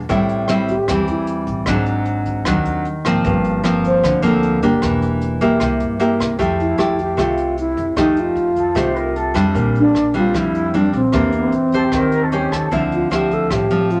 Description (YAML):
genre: bossa nova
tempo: 152 BPM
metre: 4/4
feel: straight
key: F major from 6.4 s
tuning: A4 = 440 Hz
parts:
  - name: nylon-string guitar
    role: accompaniment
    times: 0.0-14.0 s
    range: G2 to C5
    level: -20 LUFS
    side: equal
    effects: none
  - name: upright bass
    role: bass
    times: 0.0-14.0 s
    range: E1 to G2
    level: -29 LUFS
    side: equal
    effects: none
  - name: jazz brush drum kit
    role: drums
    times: 0.1-14.0 s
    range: hi-hat, kick drum, rim click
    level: -30 LUFS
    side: equal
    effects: none
  - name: reedy wooden-headed alto flute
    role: melody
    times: 0.7-1.5, 3.9-14.0 s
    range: C4 to C5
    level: -20 LUFS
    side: equal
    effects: none
  - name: mellow flute section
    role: second line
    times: 8.6-12.8 s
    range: G4 to C5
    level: -26 LUFS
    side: equal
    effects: none
room: wet small room reverb, RT60 0.5 s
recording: none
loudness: -18 LUFS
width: mono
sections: 0.0-6.4 A section; 6.4-14.0 B section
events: alto flute solo 0.0-6.4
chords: 0.1 Am7; 1.7 G#7#11; 3.2 Gm11; 4.8 Em7b5; 5.6 C7; 6.4 Fmaj9; 8.0 F9; 9.6 Bb69; 11.1 Em7b5; 11.9 Eb6; 12.7 Dm9